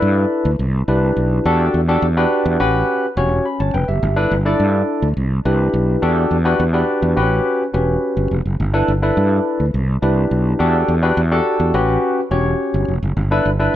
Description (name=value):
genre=early-eighties boogie funk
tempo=105 BPM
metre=4/4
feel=straight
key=unclear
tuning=A4 = 440 Hz
part: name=barky tine electric piano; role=accompaniment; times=0.0-13.8 s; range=C4 to B5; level=-18 LUFS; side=left 1 dB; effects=overdrive, lush chorus
part: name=fretless electric bass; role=bass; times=0.0-13.7 s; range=E1 to G2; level=-17 LUFS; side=right 1 dB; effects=none
room=digital ambience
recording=none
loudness=-15 LUFS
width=side -12 dB against mid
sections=0.0-13.8 A section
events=none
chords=0.0 G69; 0.6 Cmaj9; 1.5 Em11; 2.6 A13; 4.0 G69; 5.2 Cmaj9; 6.0 Em11; 7.2 A13; 8.6 G69; 9.7 Cmaj9; 10.6 Em11; 11.7 A13; 13.2 G69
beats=0.03 0.60 1.17 | 1.74 2.31 2.88 3.45 | 4.03 4.60 5.17 5.74 | 6.31 6.88 7.45 8.03 | 8.60 9.17 9.74 10.31 | 10.88 11.45 12.03 12.60 | 13.17 13.74